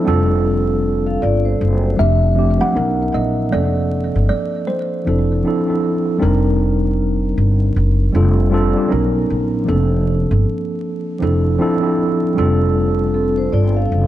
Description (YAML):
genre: lo-fi hip hop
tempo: 78 BPM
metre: 4/4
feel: swing 61% on 16ths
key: F major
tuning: A4 = 437 Hz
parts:
  - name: mellow tine electric piano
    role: accompaniment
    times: 0.0-14.1 s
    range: F3 to A#4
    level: -18 LUFS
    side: right 1 dB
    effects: medium stereo tremolo, low-pass filter
  - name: upright bass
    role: bass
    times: 0.1-14.1 s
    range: F1 to B1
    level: -17 LUFS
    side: equal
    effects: none
  - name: vibraphone with soft mallets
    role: second line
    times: 1.1-2.0, 13.1-14.1 s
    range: C4 to F5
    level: -23 LUFS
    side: left 3 dB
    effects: low-pass filter, tape echo
  - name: kalimba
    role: melody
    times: 2.0-7.3 s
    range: C5 to Gb5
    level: -22 LUFS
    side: equal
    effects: low-pass filter, tape echo
room: light reverb, small room ambience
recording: vinyl crackle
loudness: -14 LUFS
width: side -13 dB against mid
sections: 0.0-2.0 A section; 2.0-14.1 B section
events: none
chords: 0.1 F6; 2.8 Bmaj9; 3.5 Bbmaj9/F; 5.1 Dm9/F; 6.2 Cm7/F; 8.1 F6; 8.9 Bmaj9; 9.7 Bbmaj9/F; 11.2 Dm9/F; 12.4 F6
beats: 0.45 1.22 | 1.99 2.75 3.52 4.29 | 5.06 5.83 6.60 7.37 | 8.14 8.91 9.68 10.45 | 11.22 11.99 12.76 13.53